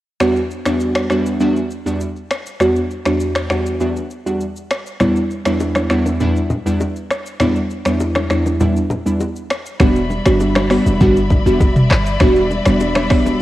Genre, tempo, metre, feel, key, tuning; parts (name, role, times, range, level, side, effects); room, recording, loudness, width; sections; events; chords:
afrobeats; 100 BPM; 4/4; straight; E minor; A4 = 444 Hz
glassy digital keys; accompaniment; 0.2-13.4 s; E2 to F#4; -16 LUFS; equal; chorus
afro-pop drum kit; drums; 0.2-13.4 s; finger snaps, handclaps, hi-hat, kick drum, rim click, shaker, toms; -19 LUFS; equal; cassette tape
congas and bongos; percussion; 5.0-13.4 s; -24 LUFS; left 2 dB
warm studio string section; sustained chords; 9.8-13.4 s; G3 to B5; -23 LUFS; left 2 dB
clean 808-style bass; bass; 9.8-13.4 s; D1 to G1; -18 LUFS; equal; tube saturation
light reverb; home recording on cassette; -14 LUFS; side -15 dB against mid
0.2-9.8 A section; 9.8-13.4 B section
0.2 Em7